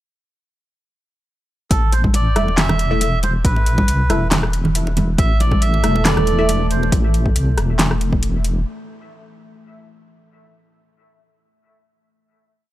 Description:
deep dubstep; 138 BPM; 4/4; swing 53% on 16ths, half-time; A minor; A4 = 440 Hz
melodica; melody; 1.7-6.9 s; A4 to E5; -24 LUFS; right 3 dB; dub echo
deep soft wobble bass; bass; 1.7-8.7 s; E1 to C2; -18 LUFS; equal; chorus
deep house drum kit; drums; 1.7-8.5 s; handclaps, hi-hat, rim click, snare drum; -20 LUFS; equal; overdrive, studio reverb
electronic kick drum; drums; 1.7-8.2 s; -19 LUFS; equal; overdrive, studio reverb
congas; percussion; 1.9-6.9 s; -23 LUFS; right 1 dB
filtered dub chord stab; stabs; 2.4-6.5 s; A3 to E5; -26 LUFS; left 1 dB; phaser, lush chorus, dub echo
deep dark ambient pad; sustained chords; 5.6-6.9 s; E3 to A4; -26 LUFS; right 2 dB; chorus, built-in reverb
little or no reverb; dry, gritty hardware recording; -15 LUFS; side -15 dB against mid
1.7-8.7 drop
drop 1.7-8.7
1.7 A5

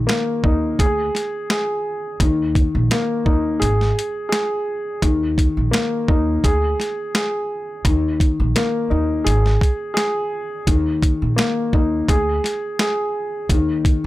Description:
hip hop, boom-bap hip-hop; 85 BPM; 4/4; swing 54% on 16ths; A4 = 440 Hz
dark baby grand piano; accompaniment; 0.0-14.1 s; Eb3 to Ab4; -20 LUFS; left 1 dB; cassette tape, high-pass filter, low-pass filter
upright bass; bass; 0.0-14.1 s; Ab1 to Eb2; -21 LUFS; right 1 dB
boom bap sampler-style drum kit; drums; 0.1-14.0 s; hi-hat, kick drum, snare drum; -18 LUFS; equal
little or no reverb; -17 LUFS; side -17 dB against mid
0.0-14.1 A section
break 3.6-5.0
0.0 Eb5; 0.8 N.C.; 2.2 Eb5; 3.6 N.C.; 5.0 Eb5; 6.4 N.C.; 7.8 Eb5; 9.3 N.C.; 10.7 Eb5; 12.1 N.C.; 13.5 Eb5

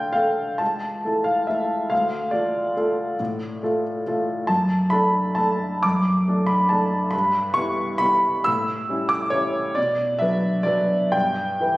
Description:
classical, piano waltz; 119-148 BPM; 3/4; rubato; D minor, D major from 4.5 s; A4 = 440 Hz
warm upright piano; solo; 0.0-11.8 s; C#2 to E6; -20 LUFS; equal
moderate recital hall reverb, RT60 1.4 s; recorded on a phone in the room, studio reverb; -20 LUFS; side -19 dB against mid
0.0-11.8 A section
0.0 Dm; 0.6 A/C#; 1.9 Dm; 4.5 D/F#; 7.1 Em/G; 8.5 A7; 9.8 Bm; 11.1 Em/G

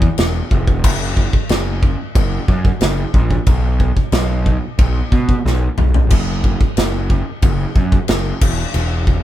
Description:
heavy metal; 91 BPM; 4/4; straight; A4 = 440 Hz
fuzz picked electric bass; bass; 0.0-9.2 s; E1 to B2; -17 LUFS; equal; overdrive
big rock drum kit; drums; 0.0-9.2 s; china cymbal, crash cymbal, kick drum, snare drum, toms; -16 LUFS; equal
little or no reverb; band playing live in one room; -14 LUFS; side -13 dB against mid
0.0-9.2 A section
drum fill 5.5-6.1

